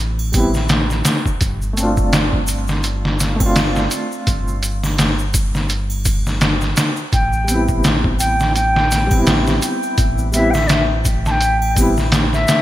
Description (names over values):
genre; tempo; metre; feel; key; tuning
trip hop; 84 BPM; 4/4; swing 57% on 16ths; A minor; A4 = 440 Hz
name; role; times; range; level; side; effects
round analog bass; bass; 0.0-12.5 s; G1 to A1; -20 LUFS; equal; none
triangle and tube shaker; percussion; 0.2-12.6 s; none; -29 LUFS; equal; none
felt-muted upright piano; accompaniment; 0.3-12.0 s; G3 to F4; -22 LUFS; equal; tremolo, tape echo
trip hop sampler-style drum kit; drums; 0.3-12.6 s; hi-hat, kick drum, snare drum; -18 LUFS; equal; overdrive, gated reverb
wooden flute; melody; 7.1-12.6 s; D5 to A5; -20 LUFS; equal; vintage 12-bit sampler grit, tape echo
room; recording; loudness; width
light reverb, small room ambience; bright 1980s-style digital production; -14 LUFS; side -14 dB against mid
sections
0.0-12.6 A section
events
none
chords
0.0 Am7; 1.4 G7sus4; 7.1 Am7